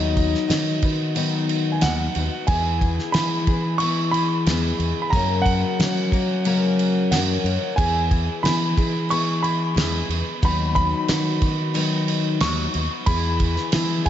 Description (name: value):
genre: folk rock and heartland rock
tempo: 91 BPM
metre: 4/4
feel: straight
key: E major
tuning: A4 = 440 Hz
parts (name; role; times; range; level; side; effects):
- dark grand piano; melody; 0.0-14.1 s; D#5 to C#6; -26 LUFS; right 1 dB; slapback echo, tape echo
- picked twelve-string acoustic guitar; accompaniment; 0.0-14.1 s; F#2 to A#4; -26 LUFS; left 5 dB; none
- modern bright fingered electric bass; bass; 0.0-14.1 s; D#2 to F#3; -23 LUFS; equal; none
- damped 70s drum kit; drums; 0.2-14.1 s; crash cymbal, kick drum, snare drum; -24 LUFS; right 1 dB; none
room: moderate concert hall reverb, RT60 2.1 s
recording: big arena sound, nothing above 7.7 kHz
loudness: -19 LUFS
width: side -10 dB against mid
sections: 0.0-14.1 A section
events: none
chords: 0.0 B/D#; 2.5 E; 5.1 F#; 7.8 E; 10.4 B/D#; 13.1 E